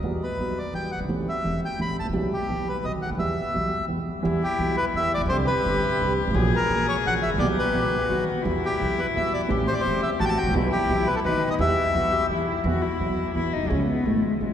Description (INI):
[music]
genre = tango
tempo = 171 BPM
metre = 3/4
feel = rubato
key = E minor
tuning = A4 = 443 Hz
[part]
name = dark concert grand piano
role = accompaniment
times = 0.0-14.5 s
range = E1 to G4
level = -27 LUFS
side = right 2 dB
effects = none
[part]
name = upright bass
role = bass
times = 0.0-14.5 s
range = E1 to E2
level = -30 LUFS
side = right 1 dB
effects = none
[part]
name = bandoneon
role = melody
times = 0.2-12.3 s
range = G4 to B5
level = -26 LUFS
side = left 1 dB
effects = none
[part]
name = warm cello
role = second line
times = 4.2-14.5 s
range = G#3 to G#4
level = -27 LUFS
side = left 4 dB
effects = none
[sound]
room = wet cathedral reverb, RT60 6.3 s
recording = recorded in a church or concert hall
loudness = -22 LUFS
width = side -9 dB against mid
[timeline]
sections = 0.0-4.2 A section; 4.2-12.7 A section; 12.7-14.5 B section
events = cello solo 12.7-14.5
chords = 0.0 Emadd9; 1.1 Am7; 2.1 Em/B; 2.8 B; 3.2 Em; 5.3 Csus2; 6.4 F#7/A#; 7.4 Em/B; 8.1 B; 8.5 Emadd9; 9.5 Am7; 10.6 Em/B; 11.2 B; 11.6 Em; 12.7 Esus2; 13.7 C#